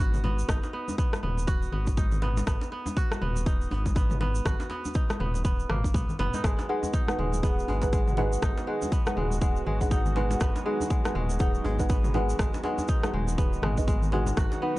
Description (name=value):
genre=afro house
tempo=121 BPM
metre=4/4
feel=swing 60% on 16ths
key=G# minor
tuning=A4 = 440 Hz
part: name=kora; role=arpeggios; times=0.0-14.8 s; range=G#3 to F#4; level=-34 LUFS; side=right 1 dB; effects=sidechain pumping, tape echo
part: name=round analog bass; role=bass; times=0.0-14.5 s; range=D#1 to B1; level=-29 LUFS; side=equal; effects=tube saturation, sidechain pumping
part: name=cabasa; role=percussion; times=0.0-14.6 s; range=none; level=-45 LUFS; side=right 4 dB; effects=none
part: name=djembe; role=percussion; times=0.0-14.8 s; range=none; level=-38 LUFS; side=right 1 dB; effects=none
part: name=house drum kit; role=drums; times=0.1-14.5 s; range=rim click, toms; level=-34 LUFS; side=equal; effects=none
part: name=congas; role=percussion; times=0.1-14.8 s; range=none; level=-37 LUFS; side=left 3 dB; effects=none
part: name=electronic kick drum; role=drums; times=0.5-14.5 s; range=none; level=-26 LUFS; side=equal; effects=none
part: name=warm analog pad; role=sustained chords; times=6.4-14.8 s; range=B2 to F#4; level=-37 LUFS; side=equal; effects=chorus, tremolo, sidechain pumping
part: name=deep mellow chord stab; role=stabs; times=6.7-14.8 s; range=D#4 to F#5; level=-31 LUFS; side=right 1 dB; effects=chorus, sidechain pumping, tape echo
room=small room ambience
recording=dry, gritty hardware recording, transformer saturation, nothing above 11.0 kHz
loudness=-24 LUFS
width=side -18 dB against mid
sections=0.0-14.8 A section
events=none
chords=0.0 B; 6.4 G#m7